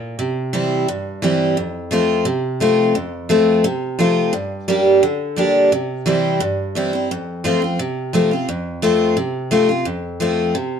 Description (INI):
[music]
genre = bluegrass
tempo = 174 BPM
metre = 4/4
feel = straight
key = unclear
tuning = A4 = 436 Hz
[part]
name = picked steel-string acoustic guitar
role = solo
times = 0.0-10.8 s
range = F2 to G4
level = -16 LUFS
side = equal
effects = none
[sound]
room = light reverb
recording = dark, warm production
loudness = -16 LUFS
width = side -7 dB against mid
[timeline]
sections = 0.0-5.7 A section; 5.7-10.8 A section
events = none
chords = 0.2 C; 1.6 F; 4.3 Gm; 5.7 C; 7.1 F